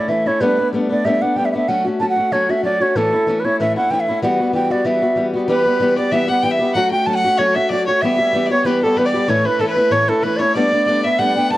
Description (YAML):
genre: celtic folk, Celtic reel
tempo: 189 BPM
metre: 4/4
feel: swing 54% on 8ths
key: E dorian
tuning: A4 = 441 Hz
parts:
  - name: bright baroque flute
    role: melody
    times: 0.0-11.6 s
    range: A4 to A5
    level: -17 LUFS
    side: right 2 dB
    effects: analog delay
  - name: fingerpicked swing-style acoustic guitar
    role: accompaniment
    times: 0.0-11.6 s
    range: A2 to G4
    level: -19 LUFS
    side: left 2 dB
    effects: none
  - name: clear fiddle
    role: second line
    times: 5.5-11.6 s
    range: A4 to A5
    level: -23 LUFS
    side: left 3 dB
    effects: none
room: moderate studio reverb, RT60 0.5 s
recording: cassette tape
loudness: -14 LUFS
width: side -16 dB against mid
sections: 0.0-5.5 A section; 5.5-11.6 A section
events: none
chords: 0.4 Gadd9; 1.7 F#m; 3.0 A; 4.2 Emadd9; 5.5 Em; 6.8 F#m; 8.0 Em; 9.3 A; 10.6 Gadd9